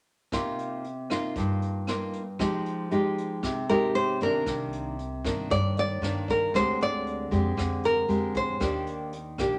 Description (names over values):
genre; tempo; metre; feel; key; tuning
bossa nova; 116 BPM; 4/4; straight; C minor; A4 = 437 Hz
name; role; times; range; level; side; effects
nylon-string guitar; accompaniment; 0.3-9.6 s; G2 to G4; -31 LUFS; equal; none
vintage brush drum kit; drums; 0.3-9.5 s; hi-hat, kick drum, rim click; -40 LUFS; equal; none
nylon-string guitar; melody; 3.7-9.6 s; Bb4 to D5; -29 LUFS; equal; none
upright bass; bass; 4.5-9.6 s; Bb1 to G2; -35 LUFS; equal; none
room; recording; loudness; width
light reverb; none; -28 LUFS; mono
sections
0.3-4.5 A section; 4.5-9.6 B section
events
none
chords
0.3 Cm7; 2.4 Fm9; 4.5 Cm9; 6.5 Bb13/D; 8.6 Ebmaj7